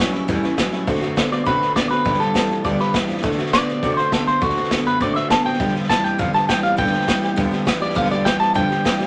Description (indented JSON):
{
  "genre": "rockabilly",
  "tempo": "203 BPM",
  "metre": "4/4",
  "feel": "straight",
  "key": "D major",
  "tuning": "A4 = 441 Hz",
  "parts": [
    { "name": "electric guitar at the edge of break-up", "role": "melody", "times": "0.0-9.1 s", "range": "C#4 to A5", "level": "-23 LUFS", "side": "equal", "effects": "none" },
    { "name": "picked steel-string acoustic guitar", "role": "accompaniment", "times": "0.0-9.1 s", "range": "G2 to G4", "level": "-28 LUFS", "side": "equal", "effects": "none" },
    { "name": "electric guitar through a small old amp", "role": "riff", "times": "0.0-9.1 s", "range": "G2 to B3", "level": "-26 LUFS", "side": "equal", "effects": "none" },
    { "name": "upright bass", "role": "bass", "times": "0.0-9.1 s", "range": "G1 to C3", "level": "-36 LUFS", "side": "equal", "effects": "none" },
    { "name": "vintage drum kit", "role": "drums", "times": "0.1-9.0 s", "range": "hi-hat, kick drum, snare drum", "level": "-25 LUFS", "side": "equal", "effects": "none" }
  ],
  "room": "wet studio ambience, RT60 0.5 s",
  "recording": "none",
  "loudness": "-19 LUFS",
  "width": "mono",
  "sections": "0.9-9.1 A section",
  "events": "clean electric guitar solo 0.9-9.1",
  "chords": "0.0 A7; 0.9 D7; 2.1 G7; 3.2 D7; 5.6 G7",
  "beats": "0.00 0.29 0.58 | 0.88 1.17 1.47 1.76 | 2.06 2.35 2.65 2.94 | 3.24 3.53 3.83 4.12 | 4.42 4.71 5.01 5.31 | 5.60 5.90 6.19 6.49 | 6.78 7.08 7.37 7.67 | 7.96 8.26 8.56 8.85"
}